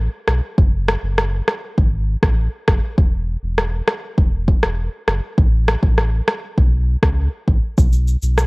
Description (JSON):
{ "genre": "dancehall", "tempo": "100 BPM", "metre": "4/4", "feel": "straight", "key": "unclear", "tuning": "A4 = 440 Hz", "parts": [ { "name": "sub bass with octave", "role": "bass", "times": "0.0-8.5 s", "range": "E1 to C#2", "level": "-18 LUFS", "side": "equal", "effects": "none" }, { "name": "afro-pop drum kit", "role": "drums", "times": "0.3-8.5 s", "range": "kick drum, rim click, shaker", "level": "-16 LUFS", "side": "equal", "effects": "none" } ], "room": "little or no reverb", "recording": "worn, warbling old tape, cassette tape, warbly pitch drift", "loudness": "-15 LUFS", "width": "side -30 dB against mid", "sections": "0.0-7.8 A section", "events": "none", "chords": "none" }